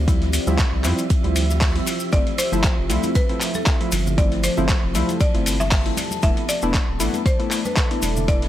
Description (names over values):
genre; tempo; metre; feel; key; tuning
deep house; 117 BPM; 4/4; swing 55% on 16ths; unclear; A4 = 441 Hz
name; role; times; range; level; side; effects
deep dark ambient pad; sustained chords; 0.0-8.5 s; A3 to D5; -30 LUFS; left 1 dB; chorus, built-in reverb, sidechain pumping
round analog bass; bass; 0.0-8.5 s; D1 to F2; -23 LUFS; equal; sidechain pumping
deep dark ambient pad; texture; 0.0-8.5 s; F3 to A5; -31 LUFS; equal; chorus, built-in reverb, sidechain pumping
warm analog keys; stabs; 0.1-8.5 s; F3 to E4; -26 LUFS; equal; chorus, sidechain pumping, low-pass filter, digital delay
dusty soul sampler-style drum kit; drums; 0.1-8.5 s; handclaps, hi-hat; -26 LUFS; equal; overdrive
electronic kick drum; drums; 0.1-8.4 s; none; -20 LUFS; equal; none
open jazz drum kit; drums; 0.1-8.5 s; hi-hat, ride cymbal, snare drum; -36 LUFS; right 3 dB; sidechain pumping on cymbals, high-pass filter on cymbals, sidechain pumping on hats, high-pass filter on hats, high-pass filter on snare, high-pass filter on room
maracas; percussion; 0.1-8.4 s; none; -30 LUFS; left 4 dB; none
buzzing marimba with hard mallets; melody; 2.1-8.5 s; A4 to E5; -28 LUFS; left 1 dB; tape echo
congas; percussion; 3.0-8.3 s; none; -33 LUFS; right 1 dB; none
room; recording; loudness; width
small room ambience; none; -18 LUFS; side -12 dB against mid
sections
0.0-8.5 A section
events
none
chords
0.0 Dm11; 1.9 G13sus4; 6.2 E7sus4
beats
| 0.08 0.59 1.10 1.62 | 2.13 2.64 3.15 3.67 | 4.18 4.69 5.21 5.72 | 6.23 6.74 7.26 7.77 | 8.28